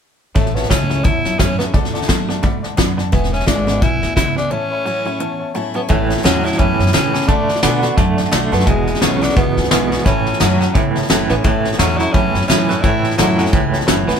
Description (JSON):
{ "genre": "rockabilly", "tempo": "173 BPM", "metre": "4/4", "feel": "swing 58% on 8ths", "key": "A major", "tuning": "A4 = 440 Hz", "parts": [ { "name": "warm upright piano", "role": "accompaniment", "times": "0.3-14.2 s", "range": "B4 to B5", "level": "-26 LUFS", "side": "left 5 dB", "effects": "none" }, { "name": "twangy electric guitar", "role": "riff", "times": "0.3-14.2 s", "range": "E2 to B3", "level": "-21 LUFS", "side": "right 4 dB", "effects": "tremolo" }, { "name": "raspy tenor saxophone", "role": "melody", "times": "0.4-14.2 s", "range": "G#3 to E4", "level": "-21 LUFS", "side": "left 1 dB", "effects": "none" }, { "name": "picked steel-string acoustic guitar", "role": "accompaniment", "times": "0.4-14.2 s", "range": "E2 to F#4", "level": "-26 LUFS", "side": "left 3 dB", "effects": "none" }, { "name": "upright bass", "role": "bass", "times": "0.4-14.2 s", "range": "E1 to B2", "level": "-21 LUFS", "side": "equal", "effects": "none" }, { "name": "soft brush drum kit", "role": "drums", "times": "0.4-14.2 s", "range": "hi-hat, kick drum, snare drum", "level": "-17 LUFS", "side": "equal", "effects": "none" } ], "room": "light reverb", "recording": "band playing live in one room", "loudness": "-13 LUFS", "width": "side -7 dB against mid", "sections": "0.4-5.9 A section; 5.9-14.2 B section", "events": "break 4.5-5.9; upright piano fill 5.2-5.9", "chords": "0.4 A; 1.7 D; 3.1 E7; 4.5 A; 7.3 D; 8.7 E7; 10.1 A" }